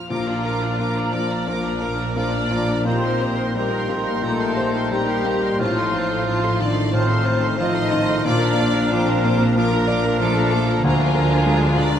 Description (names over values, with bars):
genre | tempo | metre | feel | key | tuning
classical, romantic movement for piano and orchestra | 84-96 BPM | 4/4 | rubato | Bb major | A4 = 440 Hz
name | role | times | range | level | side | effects
clear concert grand piano | melody | 0.0-12.0 s | D2 to D5 | -22 LUFS | left 2 dB | none
rich symphonic violin section | second line | 0.0-12.0 s | F4 to F6 | -28 LUFS | left 2 dB | none
bright symphonic viola section | accompaniment | 0.0-12.0 s | F3 to D5 | -30 LUFS | right 1 dB | none
rich symphonic violin section | melody | 0.1-12.0 s | Ab5 to D6 | -32 LUFS | equal | none
bright clarinet | second line | 0.1-12.0 s | D4 to Eb4 | -31 LUFS | equal | none
mellow hollow large flute ensemble | second line | 0.1-12.0 s | Bb5 to C6 | -31 LUFS | right 1 dB | none
warm cor anglais | second line | 0.1-12.0 s | F5 to Ab5 | -29 LUFS | right 2 dB | none
warm bassoon | accompaniment | 0.1-12.0 s | Eb3 to F3 | -31 LUFS | right 2 dB | none
mellow French horn section | sustained chords | 0.1-12.0 s | F3 to Eb4 | -28 LUFS | left 3 dB | none
clear symphonic double bass section | bass | 0.1-12.0 s | A1 to D2 | -29 LUFS | right 3 dB | none
rich symphonic cello section | bass | 0.1-12.0 s | A2 to D3 | -27 LUFS | right 3 dB | none
timpani | percussion | 0.1-1.1 s | Bb2 | -36 LUFS | right 1 dB | none
room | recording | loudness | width
wet concert hall reverb, RT60 2.0 s | none | -18 LUFS | side -9 dB against mid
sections
0.1-12.0 A section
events
none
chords
0.1 Bb; 2.9 Cm7/Bb; 5.6 F7/A; 8.3 Bb; 10.9 Bb7/D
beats
| 0.11 0.80 1.48 2.17 | 2.86 3.56 4.23 4.92 | 5.60 6.27 6.93 7.59 | 8.25 8.91 9.56 10.21 | 10.85 11.47